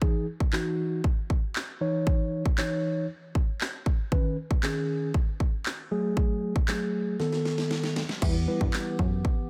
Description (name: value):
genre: dance-pop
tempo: 117 BPM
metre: 4/4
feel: straight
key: B mixolydian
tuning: A4 = 440 Hz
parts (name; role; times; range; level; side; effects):
- mellow tine electric piano; accompaniment; 0.0-9.0 s; D#3 to C#5; -31 LUFS; equal; none
- house drum kit; drums; 0.0-9.4 s; crash cymbal, handclaps, kick drum, snare drum; -30 LUFS; equal; none
- chamber organ, stopped flute; sustained chords; 8.2-9.5 s; E3 to G4; -38 LUFS; equal; sidechain pumping
- plucky analog bass; bass; 8.2-9.2 s; E2 to G2; -30 LUFS; equal; sidechain pumping
room: little or no reverb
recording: none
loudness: -28 LUFS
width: mono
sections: 0.0-8.2 A section; 8.2-9.5 B section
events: drum fill 7.2-8.2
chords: 0.0 Emaj7; 1.8 C#madd9; 4.1 Badd9; 5.9 F#madd9; 7.2 B7; 8.2 Em